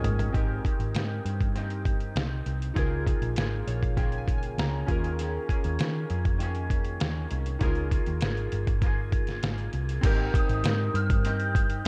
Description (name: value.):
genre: indie pop, bedroom pop.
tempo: 99 BPM.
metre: 4/4.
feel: straight.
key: Ab major.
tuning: A4 = 442 Hz.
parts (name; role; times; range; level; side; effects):
twangy electric guitar; accompaniment; 0.0-11.9 s; Db3 to Ab4; -40 LUFS; equal; subtle chorus, warbly pitch drift, dub echo.
warm analog keys; accompaniment; 0.0-11.9 s; C4 to Bb5; -38 LUFS; equal; chorus, cassette tape, dub echo.
vintage muted picked electric bass; bass; 0.0-11.9 s; G1 to Eb3; -32 LUFS; equal; none.
lo-fi sampler-style drum kit; drums; 0.0-11.9 s; crash cymbal, hi-hat, kick drum, snare drum, toms; -30 LUFS; equal; none.
glockenspiel with soft plastic mallets; melody; 10.4-11.9 s; Eb6 to G6; -39 LUFS; equal; ensemble chorus, dub echo.
room: light reverb.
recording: echo-heavy mix.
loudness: -28 LUFS.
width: mono.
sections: 0.3-10.0 A section; 10.0-11.9 B section.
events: drum fill 0.0-0.3; synth keys fill 3.4-5.2.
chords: 0.3 Abmaj7; 2.8 Db6; 4.9 Eb7sus4; 7.6 Db6; 10.0 Abmaj7.